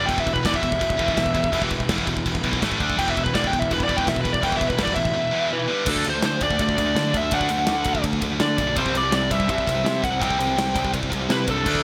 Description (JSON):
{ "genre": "heavy metal", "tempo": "166 BPM", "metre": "4/4", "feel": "straight", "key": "E minor", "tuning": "A4 = 440 Hz", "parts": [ { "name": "smooth overdriven lead guitar", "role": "melody", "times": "0.0-11.8 s", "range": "A4 to G5", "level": "-26 LUFS", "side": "equal", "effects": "digital delay" }, { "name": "heavy high-gain guitar", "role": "riff", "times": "0.0-11.8 s", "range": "E2 to D4", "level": "-31 LUFS", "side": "equal", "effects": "distortion" }, { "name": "heavy high-gain guitar", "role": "riff", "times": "0.0-11.8 s", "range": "E2 to D4", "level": "-32 LUFS", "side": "equal", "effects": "distortion" }, { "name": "fuzz picked electric bass", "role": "bass", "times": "0.0-11.8 s", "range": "E1 to D3", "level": "-30 LUFS", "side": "equal", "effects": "overdrive" }, { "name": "dark studio string section", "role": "sustained chords", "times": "0.1-11.8 s", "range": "D3 to A5", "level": "-40 LUFS", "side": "equal", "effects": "none" }, { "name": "overdriven electric guitar", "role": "riff", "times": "0.1-11.8 s", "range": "E2 to D4", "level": "-33 LUFS", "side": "equal", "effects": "none" }, { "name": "modern studio drum kit", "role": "drums", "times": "0.1-11.8 s", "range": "crash cymbal, kick drum, ride cymbal, snare drum", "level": "-30 LUFS", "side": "equal", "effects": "none" }, { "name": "high-gain lead guitar", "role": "second line", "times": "11.3-11.8 s", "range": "D4 to E4", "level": "-34 LUFS", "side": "equal", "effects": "none" } ], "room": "little or no reverb", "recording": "none", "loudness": "-22 LUFS", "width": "mono", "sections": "0.0-5.9 A section; 5.9-11.8 B section", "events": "lead electric guitar solo 0.0-5.9", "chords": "0.1 Em; 2.6 A5; 2.8 D5; 3.0 Em; 5.7 G5; 5.9 D; 8.8 C", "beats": "| 0.08 0.44 0.81 1.17 | 1.53 1.89 2.26 2.62 | 2.98 3.34 3.71 4.07 | 4.43 4.79 5.15 5.52 | 5.88 6.24 6.60 6.96 | 7.33 7.69 8.05 8.41 | 8.77 9.13 9.49 9.86 | 10.22 10.58 10.94 11.30 | 11.66" }